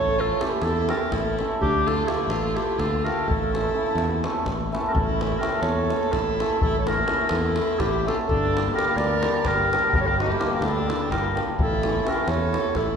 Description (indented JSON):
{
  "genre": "balkan folk, Balkan wedding band",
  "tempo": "252 BPM (eighths)",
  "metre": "7/8",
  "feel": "straight",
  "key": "A phrygian dominant",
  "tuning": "A4 = 440 Hz",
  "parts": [
    { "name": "warm clarinet", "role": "melody", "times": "0.0-13.0 s", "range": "G4 to D5", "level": "-25 LUFS", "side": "right 1 dB", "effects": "none" },
    { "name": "rich violin", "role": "second line", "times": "0.0-13.0 s", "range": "D4 to Bb4", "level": "-31 LUFS", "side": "left 2 dB", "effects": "none" },
    { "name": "modern bright fingered electric bass", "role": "bass", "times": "0.0-13.0 s", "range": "G1 to E2", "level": "-28 LUFS", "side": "equal", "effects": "none" },
    { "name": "hammered dulcimer", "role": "accompaniment", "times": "0.2-13.0 s", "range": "E3 to A4", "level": "-29 LUFS", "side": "equal", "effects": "none" },
    { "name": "davul", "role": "percussion", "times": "0.4-12.9 s", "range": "none", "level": "-28 LUFS", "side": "equal", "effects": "none" }
  ],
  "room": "wet concert hall reverb, RT60 2.0 s",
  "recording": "recorded in a church or concert hall",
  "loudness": "-21 LUFS",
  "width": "side -6 dB against mid",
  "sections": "0.0-4.9 A section; 4.9-13.0 B section",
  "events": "none",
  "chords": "0.0 A; 1.6 Dm; 3.3 A; 8.3 Gm; 11.6 A"
}